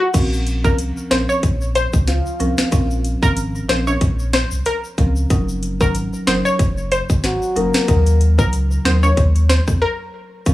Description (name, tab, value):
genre	dancehall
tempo	93 BPM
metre	4/4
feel	swing 56% on 16ths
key	Bb minor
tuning	A4 = 440 Hz
part	analog pluck	melody	0.0-10.3 s	Gb4 to Db5	-21 LUFS	left 1 dB	chorus, analog delay
part	buzzing marimba with medium mallets	accompaniment	0.1-10.5 s	F3 to Bb4	-24 LUFS	right 1 dB	sidechain pumping
part	warm sub bass	bass	0.1-10.5 s	Gb1 to F2	-18 LUFS	equal	none
part	island pop drum kit	drums	0.1-10.5 s	crash cymbal, hi-hat, kick drum, rim click, snare drum	-18 LUFS	equal	overdrive
part	egg shaker and timbales	percussion	0.1-10.5 s	none	-32 LUFS	left 2 dB	none
part	soft octave-layered synth lead	second line	2.1-3.0, 7.2-8.2 s	F4 to Bb4	-23 LUFS	left 3 dB	chorus, analog delay
room	little or no reverb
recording	dry, gritty hardware recording, small room ambience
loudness	-15 LUFS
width	side -16 dB against mid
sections	0.1-10.5 A section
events	break 9.8-10.5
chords	0.1 Bbmadd9; 5.3 Gb6; 7.9 Ebmadd9